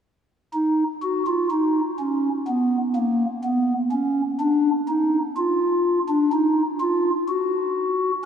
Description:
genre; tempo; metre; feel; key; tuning
classical, baroque-style 3-part fugue for pipe organ; 62 BPM; 4/4; straight; Eb minor; A4 = 442 Hz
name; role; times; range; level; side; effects
pipe organ, stopped flute; solo; 0.5-8.1 s; Bb3 to Gb4; -20 LUFS; equal; none
room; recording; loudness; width
wet cathedral reverb, RT60 4.3 s; none; -20 LUFS; side -8 dB against mid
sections
0.5-8.3 A section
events
none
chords
none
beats
| 0.54 1.51 2.48 3.44 | 4.40 5.37 6.33 7.29

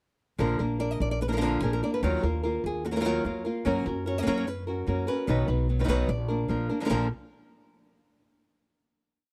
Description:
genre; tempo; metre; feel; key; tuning
flamenco; 148 BPM; 4/4; straight; unclear; A4 = 439 Hz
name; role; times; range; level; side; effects
flamenco guitar; melody; 0.4-7.1 s; Bb2 to Eb5; -30 LUFS; equal; none
upright bass; bass; 0.4-7.1 s; Bb1 to Gb2; -32 LUFS; equal; none
room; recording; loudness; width
small room ambience; dry, close 1970s-style studio recording; -28 LUFS; mono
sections
0.4-6.9 groove; 6.9-8.5 final chord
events
none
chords
0.4 Bb; 2.0 Ebmadd9; 3.7 Gb; 5.3 B; 6.1 Bb; 6.9 N.C.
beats
| 0.40 0.80 1.21 1.62 | 2.03 2.44 2.84 3.25 | 3.66 4.06 4.47 4.87 | 5.28 5.68 6.09 6.50 | 6.90

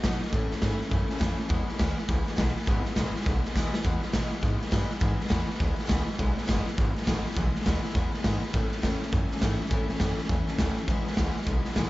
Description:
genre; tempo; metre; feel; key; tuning
rockabilly; 205 BPM; 4/4; swing 62% on 8ths; E major; A4 = 440 Hz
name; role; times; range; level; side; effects
picked steel-string acoustic guitar; accompaniment; 0.0-11.9 s; E2 to F#4; -32 LUFS; left 2 dB; none
upright bass; bass; 0.0-11.9 s; F#1 to B2; -30 LUFS; equal; none
raw garage drum kit; drums; 0.0-11.8 s; hi-hat, kick drum, snare drum; -27 LUFS; equal; none
room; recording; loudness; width
light reverb; nothing above 7.7 kHz, faint mains hum; -25 LUFS; side -18 dB against mid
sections
0.0-3.8 A section; 3.8-11.9 B section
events
drum fill 3.6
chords
0.3 A; 1.5 E; 8.5 A; 10.9 E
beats
0.04 | 0.33 0.62 0.92 1.21 | 1.50 1.79 2.09 2.38 | 2.67 2.97 3.26 3.55 | 3.85 4.14 4.43 4.72 | 5.02 5.31 5.61 5.90 | 6.19 6.48 6.78 7.07 | 7.36 7.66 7.95 8.24 | 8.54 8.83 9.12 9.42 | 9.71 10.01 10.30 10.59 | 10.88 11.18 11.47 11.77

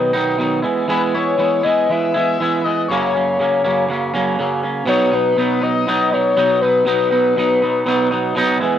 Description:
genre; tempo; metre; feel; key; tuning
rock; 120 BPM; 4/4; straight; B major; A4 = 444 Hz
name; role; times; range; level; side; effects
overdriven synth lead; melody; 0.0-8.3 s; B4 to E5; -18 LUFS; left 4 dB; chorus, cassette tape
twangy electric guitar; riff; 0.0-8.8 s; F#2 to E4; -17 LUFS; right 2 dB; none
room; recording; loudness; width
moderate spring reverb, RT60 1.3 s; home recording on cassette; -15 LUFS; side -10 dB against mid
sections
0.0-4.9 A section; 4.9-8.8 B section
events
none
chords
0.0 B; 0.6 E; 2.9 F#; 4.9 B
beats
0.39 | 0.89 1.39 1.89 2.38 | 2.88 3.38 3.88 4.38 | 4.88 5.38 5.87 6.37 | 6.87 7.36 7.86 8.36

